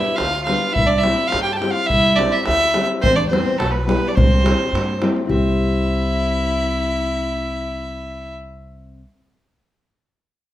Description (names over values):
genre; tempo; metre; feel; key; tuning
balkan folk, Balkan wedding band; 106 BPM; 2/4; straight; C major; A4 = 441 Hz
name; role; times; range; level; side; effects
warm fiddle; melody; 0.0-8.3 s; A4 to A5; -20 LUFS; right 1 dB; none
dark violin; second line; 0.0-8.3 s; A3 to A4; -28 LUFS; left 4 dB; none
nylon-string guitar; accompaniment; 0.0-9.0 s; G3 to C5; -24 LUFS; left 3 dB; none
davul; percussion; 0.0-5.6 s; none; -24 LUFS; equal; none
upright bass; bass; 0.2-9.0 s; B1 to G2; -22 LUFS; equal; none
room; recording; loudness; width
moderate large studio reverb, RT60 0.9 s; band playing live in one room; -16 LUFS; side -13 dB against mid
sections
0.0-5.3 A section; 5.3-7.6 B section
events
none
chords
0.0 G; 0.8 C; 3.0 Em; 4.2 C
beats
0.19 | 0.76 1.33 | 1.90 2.46 | 3.03 3.60 | 4.17 4.73 | 5.30 5.86 | 6.43 7.00